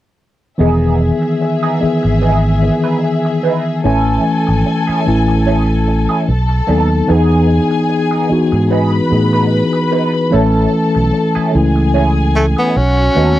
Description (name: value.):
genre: soul.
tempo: 74 BPM.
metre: 4/4.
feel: swing 54% on 16ths.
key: E major.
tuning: A4 = 440 Hz.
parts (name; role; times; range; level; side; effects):
dark studio string section; second line; 0.6-13.4 s; F#4 to B5; -21 LUFS; left 4 dB; none.
mellow tine electric piano; accompaniment; 0.6-13.4 s; D#3 to G#5; -14 LUFS; left 1 dB; medium stereo tremolo.
electric guitar at the edge of break-up; riff; 0.6-13.4 s; B3 to B4; -20 LUFS; right 7 dB; wah, tremolo.
fingered electric bass; bass; 0.6-13.4 s; E1 to A2; -14 LUFS; right 1 dB; none.
breathy tenor saxophone; melody; 12.4-13.4 s; A3 to C#4; -14 LUFS; right 1 dB; none.
room: little or no reverb.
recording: dry, close 1970s-style studio recording.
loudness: -11 LUFS.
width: side -14 dB against mid.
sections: 0.6-13.4 A section.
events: none.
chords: 0.6 Emaj7; 3.8 Amaj7; 6.3 B7; 7.1 Emaj7; 10.3 Amaj7; 12.8 B7.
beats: | 0.60 1.41 2.23 3.04 | 3.85 4.66 5.47 6.28 | 7.09 7.90 8.71 9.52 | 10.33 11.14 11.95 12.76.